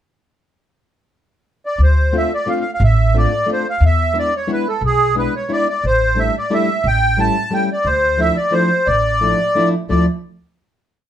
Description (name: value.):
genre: musette waltz.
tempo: 177 BPM.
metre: 3/4.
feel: straight.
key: D minor.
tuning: A4 = 441 Hz.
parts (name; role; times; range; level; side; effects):
accordion; melody; 1.7-10.1 s; G#4 to A5; -17 LUFS; right 1 dB; light tremolo tuning.
upright bass; bass; 1.8-10.1 s; A1 to E2; -16 LUFS; equal; none.
fingerpicked plugged-in steel-string acoustic guitar; accompaniment; 2.1-10.1 s; F3 to F4; -20 LUFS; left 2 dB; none.
room: moderate studio ambience, RT60 0.5 s.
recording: band playing live in one room.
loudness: -14 LUFS.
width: side -10 dB against mid.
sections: 0.8-1.8 pickup bar; 1.8-9.9 A section; 9.9-10.9 final chord.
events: none.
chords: 0.8 N.C.; 1.8 Dm7; 3.8 E7; 5.8 A7sus4; 6.9 A7; 7.9 Dmadd9.